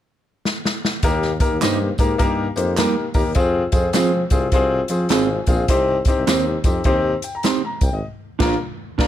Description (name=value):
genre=uptempo 1960s-style soul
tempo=103 BPM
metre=4/4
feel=swing 64% on 8ths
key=Eb major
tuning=A4 = 444 Hz
part: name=swinging big-band drum kit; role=drums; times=0.5-9.1 s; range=crash cymbal, hi-hat, kick drum, snare drum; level=-21 LUFS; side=equal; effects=none
part: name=warm upright piano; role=accompaniment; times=1.0-9.1 s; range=Bb3 to C6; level=-21 LUFS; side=left 3 dB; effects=none
part: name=warm tuba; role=bass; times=1.0-9.1 s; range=Ab1 to F3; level=-24 LUFS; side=equal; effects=none
part: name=tambourine and handclaps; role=percussion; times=1.0-7.9 s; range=none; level=-32 LUFS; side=right 6 dB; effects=none
part: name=mellow electric guitar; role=stabs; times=1.6-9.1 s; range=G3 to D5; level=-21 LUFS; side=right 9 dB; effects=none
room=light reverb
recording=none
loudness=-17 LUFS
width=side -11 dB against mid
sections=0.0-1.0 A section; 1.0-9.1 B section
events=drum fill 0.4-1.0; upright piano fill 4.8-5.7; band accent 8.0-9.1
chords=0.0 N.C.; 1.0 Eb; 3.4 Fm; 5.7 Cm; 8.0 Bb